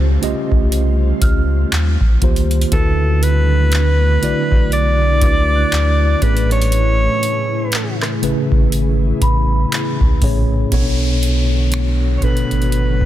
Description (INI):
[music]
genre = contemporary R&B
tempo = 60 BPM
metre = 4/4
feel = swing 58% on 16ths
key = unclear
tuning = A4 = 439 Hz
[part]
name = mellow tine electric piano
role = accompaniment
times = 0.0-13.1 s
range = A2 to D#5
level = -20 LUFS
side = right 1 dB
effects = medium stereo tremolo
[part]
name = ethereal airy pad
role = sustained chords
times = 0.0-13.1 s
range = C#3 to C#5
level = -26 LUFS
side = left 1 dB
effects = ensemble chorus, built-in reverb, sidechain pumping
[part]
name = warm sub bass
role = bass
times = 0.0-13.1 s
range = G#1 to D#2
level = -16 LUFS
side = equal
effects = none
[part]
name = downlifter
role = sound effects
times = 0.0-2.7, 10.7-13.1 s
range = none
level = -29 LUFS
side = left 1 dB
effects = none
[part]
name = booming analog drum machine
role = drums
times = 0.2-13.1 s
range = finger snaps, handclaps, hi-hat, kick drum, rim click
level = -17 LUFS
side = equal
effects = soft clipping on snare
[part]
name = celesta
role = texture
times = 1.2-11.2 s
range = B5 to F#6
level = -28 LUFS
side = equal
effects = digital delay
[part]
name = breathy alto saxophone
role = melody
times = 2.7-13.1 s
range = A4 to D5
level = -20 LUFS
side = equal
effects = digital delay
[sound]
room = little or no reverb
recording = dense, heavily limited modern master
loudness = -13 LUFS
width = side -13 dB against mid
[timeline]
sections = 0.0-10.7 A section; 10.7-13.1 B section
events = none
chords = 0.0 A7alt; 1.7 D#69; 2.7 D69; 6.2 Amaj7; 10.7 Bm7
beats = 0.72 1.72 | 2.72 3.72 4.72 5.72 | 6.72 7.72 8.72 9.72 | 10.72 11.72 12.72